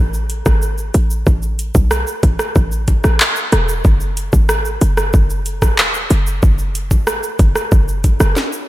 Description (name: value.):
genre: dancehall.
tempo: 93 BPM.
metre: 4/4.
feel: straight.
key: unclear.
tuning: A4 = 441 Hz.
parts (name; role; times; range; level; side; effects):
short 808-style bass; bass; 0.0-8.3 s; E1 to B1; -16 LUFS; equal; none.
island pop drum kit; drums; 0.1-8.7 s; handclaps, hi-hat, kick drum, rim click, shaker, snare drum; -15 LUFS; equal; none.
room: light reverb.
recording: none.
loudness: -13 LUFS.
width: side -16 dB against mid.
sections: 0.0-8.7 A section.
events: drum fill 8.4-8.7.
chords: none.